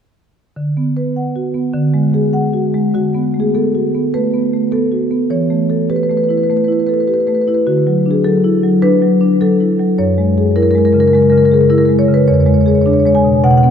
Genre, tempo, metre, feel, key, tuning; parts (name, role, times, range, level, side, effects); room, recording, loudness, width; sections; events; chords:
classical, contemporary piece for solo marimba; 103 BPM; 4/4; rubato; D lydian; A4 = 442 Hz
marimba with medium hard mallets; solo; 0.6-13.7 s; E2 to G#5; -11 LUFS; equal
wet cathedral reverb, RT60 4.7 s; dark, warm production; -11 LUFS; side -8 dB against mid
0.6-2.9 A section; 2.9-13.7 B section
0.6 D6; 1.7 D; 2.9 D6; 5.3 Emadd11; 7.7 D69; 10.0 F#9; 12.3 E6